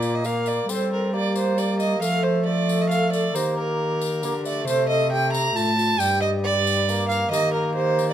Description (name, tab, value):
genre	classical, renaissance-style consort dance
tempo	136 BPM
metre	3/4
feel	straight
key	unclear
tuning	A4 = 441 Hz
part	mellow hollow tenor recorder	melody	0.0-8.1 s	F4 to Bb4	-29 LUFS	left 4 dB	none
part	rich violin	second line	0.0-8.1 s	Bb4 to Bb5	-23 LUFS	right 3 dB	none
part	mellow bassoon	accompaniment	0.0-8.1 s	G3 to C4	-28 LUFS	equal	none
part	dark cello	bass	0.0-8.1 s	G2 to G3	-26 LUFS	right 1 dB	none
part	tambourine	percussion	0.0-8.1 s	none	-36 LUFS	left 7 dB	none
room	light reverb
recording	close, detailed microphones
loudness	-20 LUFS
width	side -10 dB against mid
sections	0.0-8.1 A section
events	none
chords	0.0 Bb5; 0.7 Gm; 2.0 F; 3.3 Eb; 4.7 C5; 6.0 Gm; 7.3 Eb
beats	0.24 | 0.69 1.13 1.58 | 2.02 2.46 2.90 | 3.35 3.79 4.23 | 4.67 5.12 5.56 | 6.00 6.44 6.88 | 7.32 7.76